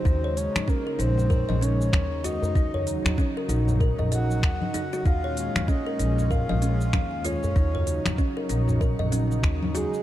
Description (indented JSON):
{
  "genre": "organic downtempo",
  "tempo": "96 BPM",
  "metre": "4/4",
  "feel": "swing 60% on 16ths",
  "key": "Eb dorian",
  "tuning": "A4 = 440 Hz",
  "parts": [
    { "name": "breathy flute-like synth lead", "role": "melody", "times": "0.0-10.0 s", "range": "Ab4 to Gb5", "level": "-32 LUFS", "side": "equal", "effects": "chorus, tape echo, shimmer reverb" },
    { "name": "warm analog pad", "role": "sustained chords", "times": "0.0-10.0 s", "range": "Bb2 to Eb4", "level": "-32 LUFS", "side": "right 1 dB", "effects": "chorus, sidechain pumping, shimmer reverb" },
    { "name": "kalimba", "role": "arpeggios", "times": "0.0-10.0 s", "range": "Db4 to Eb5", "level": "-31 LUFS", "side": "equal", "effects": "tape echo, shimmer reverb" },
    { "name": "upright bass", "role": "bass", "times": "0.1-9.9 s", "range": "Bb1 to Eb2", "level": "-25 LUFS", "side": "equal", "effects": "none" },
    { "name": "electronic kick drum", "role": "drums", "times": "0.1-9.6 s", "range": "none", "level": "-23 LUFS", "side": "equal", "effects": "none" },
    { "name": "organic electronic drum kit", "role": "drums", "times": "0.1-10.0 s", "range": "congas, finger snaps, hi-hat, shaker", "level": "-30 LUFS", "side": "left 2 dB", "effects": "none" },
    { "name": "djembe", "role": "percussion", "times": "1.2-9.9 s", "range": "none", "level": "-33 LUFS", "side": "left 1 dB", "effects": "none" }
  ],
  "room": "light reverb, digital ambience",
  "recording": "dark, warm production",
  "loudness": "-22 LUFS",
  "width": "side -13 dB against mid",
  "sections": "0.0-10.0 A section",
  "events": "none",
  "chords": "0.1 Dbsus2; 2.6 Ebm7; 5.1 Bbm7; 7.6 Ebm7"
}